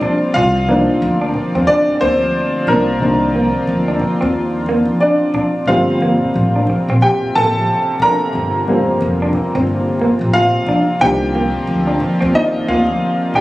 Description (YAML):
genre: R&B, neo-soul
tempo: 90 BPM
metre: 4/4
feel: swing 60% on 16ths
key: unclear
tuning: A4 = 444 Hz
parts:
  - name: electric guitar through a small old amp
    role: second line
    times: 0.0-13.4 s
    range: Bb3 to D4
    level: -19 LUFS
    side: right 1 dB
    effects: harmonic tremolo
  - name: warm upright piano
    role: accompaniment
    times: 0.0-13.4 s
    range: Eb3 to Bb5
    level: -15 LUFS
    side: equal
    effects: none
  - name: chorused pulse-width pad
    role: sustained chords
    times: 0.0-13.4 s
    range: C3 to D5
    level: -23 LUFS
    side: equal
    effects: none
  - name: congas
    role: percussion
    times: 0.0-13.4 s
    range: none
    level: -24 LUFS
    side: equal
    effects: none
  - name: upright bass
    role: bass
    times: 0.4-13.0 s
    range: F1 to Eb2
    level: -20 LUFS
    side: equal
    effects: none
room: light reverb, small room ambience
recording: recorded on a phone in the room, studio reverb, compression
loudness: -13 LUFS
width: side -17 dB against mid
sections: 0.0-13.4 A section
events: upright piano solo 0.0-13.4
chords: 0.3 Cm11; 5.7 Gm11; 11.0 Cm11